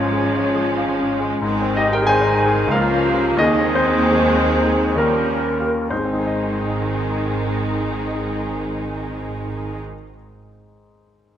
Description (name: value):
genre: classical, romantic movement for piano and orchestra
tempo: 61-96 BPM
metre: 3/4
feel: rubato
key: Ab major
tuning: A4 = 440 Hz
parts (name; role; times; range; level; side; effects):
- clear grand piano; melody; 0.0-11.4 s; Db2 to Ab5; -21 LUFS; left 2 dB; none
- muted symphonic violin section; melody; 0.0-9.8 s; C4 to Eb4; -32 LUFS; left 3 dB; none
- hollow concert flute; second line; 0.0-9.8 s; Eb4 to Ab5; -27 LUFS; equal; none
- muted symphonic violin section; second line; 0.0-9.8 s; G3 to Bb3; -28 LUFS; right 1 dB; none
- warm clarinet; second line; 0.0-9.8 s; Db4 to Ab4; -29 LUFS; equal; none
- muted symphonic viola section; accompaniment; 0.0-9.8 s; Eb3 to F3; -27 LUFS; right 2 dB; none
- mellow French horn section; sustained chords; 0.0-9.8 s; Bb3 to Ab4; -25 LUFS; left 1 dB; none
- muted symphonic cello section; bass; 0.0-9.8 s; Db2 to Ab2; -28 LUFS; right 3 dB; none
- muted symphonic double bass section; bass; 0.0-9.8 s; Ab1 to Eb2; -29 LUFS; right 3 dB; none
room: moderate scoring stage reverb, RT60 1.6 s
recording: none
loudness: -17 LUFS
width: side -10 dB against mid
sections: 0.0-5.9 A section; 5.9-11.4 B section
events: slowing down 0.5-5.9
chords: 0.0 Db/Ab; 1.4 Ab; 2.7 Bbm/Db; 3.4 Ab/Eb; 5.0 Eb9; 5.9 Ab